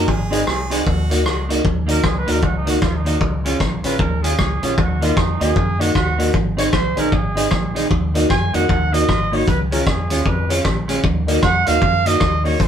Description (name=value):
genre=ska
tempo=153 BPM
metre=4/4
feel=swing 62% on 8ths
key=Eb minor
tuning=A4 = 435 Hz
part: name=bright harmonica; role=melody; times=0.0-1.5 s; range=Gb4 to Ab4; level=-28 LUFS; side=right 4 dB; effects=none
part: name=clean electric guitar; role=accompaniment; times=0.0-12.5 s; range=Ab3 to Ab4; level=-23 LUFS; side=right 3 dB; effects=none
part: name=dark upright piano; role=stabs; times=0.0-12.6 s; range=Db4 to Eb5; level=-24 LUFS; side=left 2 dB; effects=none
part: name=deep dub fingered electric bass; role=bass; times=0.0-12.7 s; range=Ab1 to Gb2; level=-22 LUFS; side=equal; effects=none
part: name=vintage drum kit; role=drums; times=0.1-12.7 s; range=hi-hat, kick drum, rim click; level=-19 LUFS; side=equal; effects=none
part: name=warm trumpet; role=melody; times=1.9-12.7 s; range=Eb4 to Ab5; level=-22 LUFS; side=right 3 dB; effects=none
room=moderate studio ambience, RT60 0.5 s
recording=band playing live in one room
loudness=-15 LUFS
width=side -8 dB against mid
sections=0.0-1.6 A section; 1.6-12.7 B section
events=trumpet solo 1.6-12.7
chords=0.1 Ab; 0.9 Ebm; 3.2 Db; 4.8 Ebm; 6.3 Ab; 7.9 Ebm; 9.5 Db; 11.0 Ebm